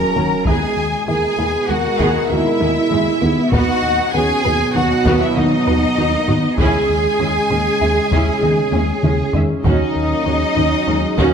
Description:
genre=cinematic, hybrid orchestral and electronic film score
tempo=98 BPM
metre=5/4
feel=straight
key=unclear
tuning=A4 = 440 Hz
part: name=warm symphonic violin section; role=melody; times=0.0-11.3 s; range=Eb5 to Bb5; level=-27 LUFS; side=left 2 dB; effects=none
part: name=rich studio violin section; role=second line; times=0.0-11.3 s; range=Eb5 to Bb5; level=-24 LUFS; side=left 1 dB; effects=none
part: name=bright trombone section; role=sustained chords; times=0.0-11.3 s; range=B2 to Db4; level=-25 LUFS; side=right 2 dB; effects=none
part: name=warm French horn section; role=sustained chords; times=0.0-11.3 s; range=B2 to Bb4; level=-24 LUFS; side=left 3 dB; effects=none
part: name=resonant blip pluck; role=arpeggios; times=0.0-11.3 s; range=Db3 to B4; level=-28 LUFS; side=equal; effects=none
part: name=smooth gliding synth bass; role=riff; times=0.0-11.3 s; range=Eb2 to Eb3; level=-22 LUFS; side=left 3 dB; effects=none
part: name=rich symphonic cello section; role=bass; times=0.0-11.3 s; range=Eb4 to Bb4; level=-20 LUFS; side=right 2 dB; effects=none
part: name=sub drop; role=sound effects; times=0.0-0.5 s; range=none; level=-40 LUFS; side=equal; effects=none
part: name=clear symphonic viola section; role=accompaniment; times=0.2-11.3 s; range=Gb3 to Fb5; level=-24 LUFS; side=right 3 dB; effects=none
part: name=rich symphonic double bass section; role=bass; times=0.2-11.3 s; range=Eb2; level=-25 LUFS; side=right 2 dB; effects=none
part: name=taiko ensemble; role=drums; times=0.5-11.3 s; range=none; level=-22 LUFS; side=equal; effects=none
room=wet scoring stage reverb, RT60 1.9 s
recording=none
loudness=-14 LUFS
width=side -7 dB against mid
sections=0.0-11.3 A section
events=impact 0.0-0.5; drum fill 8.7-9.7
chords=0.5 E/Eb; 6.6 Dbm/Eb; 9.7 Ebm7

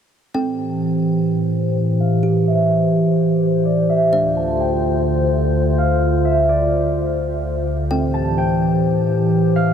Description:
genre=hip hop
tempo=127 BPM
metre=4/4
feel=half-time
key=A minor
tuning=A4 = 440 Hz
part: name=warbly tape-like pad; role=sustained chords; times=0.3-9.7 s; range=D2 to C5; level=-16 LUFS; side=equal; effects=chorus, built-in reverb, low-pass filter
part: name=kalimba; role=texture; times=0.3-9.7 s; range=C4 to G5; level=-28 LUFS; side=right 2 dB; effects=none
part: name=concert harp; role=melody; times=0.6-9.7 s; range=C5 to A5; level=-22 LUFS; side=equal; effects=low-pass filter, ping-pong delay
room=moderate huge ambient reverb, RT60 8.2 s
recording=none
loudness=-16 LUFS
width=side -8 dB against mid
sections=0.3-9.7 A section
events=filter sweep 0.3-9.7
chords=0.3 Am7; 4.1 Dm7; 7.9 Am7

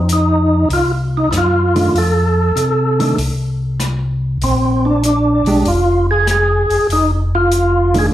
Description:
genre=soul jazz organ trio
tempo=97 BPM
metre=4/4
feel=swing 69% on 8ths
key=F mixolydian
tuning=A4 = 440 Hz
part: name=mellow tonewheel organ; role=bass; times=0.0-8.1 s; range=F1 to C3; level=-16 LUFS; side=equal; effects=slow rotary speaker
part: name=percussive tonewheel organ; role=melody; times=0.1-8.1 s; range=C4 to A4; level=-14 LUFS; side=equal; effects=slow rotary speaker, overdrive, chorus vibrato, slapback echo
part: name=swinging big-band drum kit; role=drums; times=0.1-8.0 s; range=hi-hat, rim click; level=-26 LUFS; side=left 1 dB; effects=none
part: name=hollow-body jazz guitar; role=accompaniment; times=1.8-8.1 s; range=Eb3 to G4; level=-19 LUFS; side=right 2 dB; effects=slapback echo
room=light reverb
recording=live gig heard through the venue's PA, club reverb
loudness=-12 LUFS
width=side -12 dB against mid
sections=0.0-8.1 A section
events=none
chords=0.0 F; 4.4 Bb; 6.9 F6

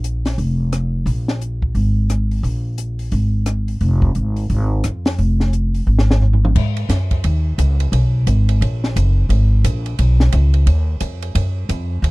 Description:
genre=modal jazz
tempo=175 BPM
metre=4/4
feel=swing 62% on 8ths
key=G# dorian from 6.6 s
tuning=A4 = 440 Hz
part: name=upright bass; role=bass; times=0.0-12.1 s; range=F1 to G#2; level=-15 LUFS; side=equal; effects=none
part: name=compact cocktail drum kit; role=drums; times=0.0-12.1 s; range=crash cymbal, hi-hat, kick drum, ride cymbal, rim click, snare drum, toms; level=-23 LUFS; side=equal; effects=none
room=little or no reverb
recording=dry, close 1970s-style studio recording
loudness=-15 LUFS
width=side -22 dB against mid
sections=0.0-6.6 A section; 6.6-12.1 B section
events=drum fill 5.9-6.6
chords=none

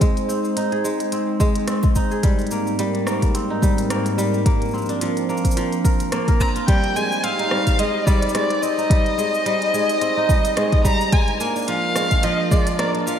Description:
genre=folktronica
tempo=108 BPM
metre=4/4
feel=swing 56% on 16ths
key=Ab lydian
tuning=A4 = 440 Hz
part: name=warbly tape-like pad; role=sustained chords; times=0.0-13.2 s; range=Ab2 to Ab5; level=-25 LUFS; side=equal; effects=chorus, built-in reverb, vintage 12-bit sampler grit
part: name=kora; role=arpeggios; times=0.0-13.2 s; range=F3 to Bb4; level=-24 LUFS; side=right 1 dB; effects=low-pass filter, ping-pong delay
part: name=electronic kick drum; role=drums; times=0.0-12.6 s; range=none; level=-18 LUFS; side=equal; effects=overdrive
part: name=organic electronic drum kit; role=drums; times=0.0-13.2 s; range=cabasa, hi-hat, rim click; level=-30 LUFS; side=equal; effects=overdrive
part: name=dark violin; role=melody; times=6.4-13.2 s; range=D5 to Bb5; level=-21 LUFS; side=equal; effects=ping-pong delay
room=wet lush hall reverb, RT60 1.7 s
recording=dreamy mix soaked in reverb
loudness=-17 LUFS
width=side -8 dB against mid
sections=0.0-6.7 A section; 6.7-13.2 B section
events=none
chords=0.0 Ab; 2.2 Eb6/Ab; 4.5 Bbadd9; 6.7 Abmaj7; 11.1 Bb7

